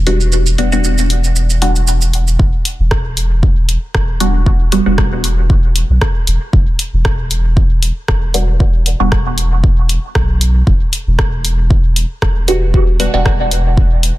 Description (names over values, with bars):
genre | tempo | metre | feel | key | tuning
dub techno | 116 BPM | 4/4 | swing 54% on 16ths | E minor | A4 = 440 Hz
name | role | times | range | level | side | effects
soft dub sub bass | bass | 0.0-14.1 s | E1 to B1 | -14 LUFS | equal | sidechain pumping
filtered dub chord stab | stabs | 0.1-5.0, 8.3-9.2, 12.5-13.3 s | G3 to F#4 | -18 LUFS | right 1 dB | phaser, vintage 12-bit sampler grit, sidechain pumping, dub echo
deep house drum kit | drums | 0.1-14.1 s | hi-hat, rim click, shaker | -20 LUFS | equal | soft clipping on snare
electronic kick drum | drums | 2.4-13.9 s | none | -14 LUFS | equal | none
room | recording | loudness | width
little or no reverb | dense, heavily limited modern master, low-pass filter | -11 LUFS | side -16 dB against mid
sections
0.0-2.4 A section; 2.4-14.2 B section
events
none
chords
0.0 Em7